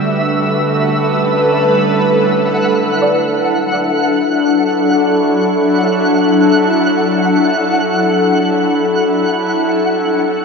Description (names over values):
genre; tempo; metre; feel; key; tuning
ambient; free time; none; none; D major; A4 = 438 Hz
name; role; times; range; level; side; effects
shimmering ambient pad; sustained chords; 0.0-10.4 s; F#3 to C#6; -12 LUFS; equal; chorus, built-in reverb
overtone-sweeping drone; drone; 0.0-2.2 s; D3 to A3; -21 LUFS; equal; chorus, built-in reverb
twinkling granular texture; texture; 0.0-10.4 s; E5 to F#6; -19 LUFS; left 1 dB; built-in reverb
soft round pluck; arpeggios; 3.0-7.2 s; D5 to F#5; -23 LUFS; equal; ensemble chorus, diffuse ambient delay
room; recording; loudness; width
wet plate reverb, RT60 3.1 s; dreamy mix soaked in reverb, nothing above 8.0 kHz; -11 LUFS; side -4 dB against mid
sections
0.0-2.1 A section; 2.1-10.4 B section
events
none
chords
0.1 A9; 2.1 Dmaj9; 9.6 C6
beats
free time